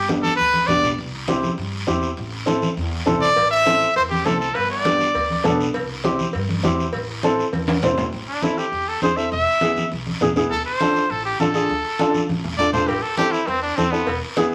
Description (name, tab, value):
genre	latin, cumbia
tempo	202 BPM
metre	4/4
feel	straight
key	A minor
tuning	A4 = 440 Hz
part	bright trumpet	melody	0.0-0.9, 3.2-5.6, 8.3-14.2 s	B3 to E5	-22 LUFS	equal	none
part	upright bass	bass	0.0-14.2 s	E1 to G2	-33 LUFS	equal	none
part	dark upright piano	accompaniment	0.1-14.5 s	B3 to C5	-24 LUFS	equal	none
part	congas	percussion	0.1-14.5 s	none	-29 LUFS	equal	none
part	guiro	percussion	0.1-14.5 s	none	-35 LUFS	equal	none
part	cowbell and timbales	percussion	3.4-8.0, 12.9-14.2 s	none	-31 LUFS	equal	none
room	wet studio reverb, RT60 0.9 s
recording	vinyl crackle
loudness	-21 LUFS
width	mono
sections	0.0-8.1 A section; 8.1-14.5 B section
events	drum fill 7.5-8.1, 12.1-12.9; trumpet solo 8.1-14.5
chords	0.0 G; 1.0 C; 2.2 Am; 4.6 G; 5.7 C; 6.9 Am; 9.3 E; 10.5 Dm; 12.9 Am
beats	0.09 0.39 0.69 | 0.98 1.28 1.58 1.88 | 2.17 2.47 2.77 3.07 | 3.37 3.66 3.96 4.26 | 4.56 4.85 5.15 5.45 | 5.75 6.04 6.34 6.64 | 6.94 7.24 7.53 7.83 | 8.13 8.43 8.72 9.02 | 9.32 9.62 9.91 10.21 | 10.51 10.81 11.10 11.40 | 11.70 11.99 12.29 12.59 | 12.89 13.18 13.48 13.78 | 14.07 14.37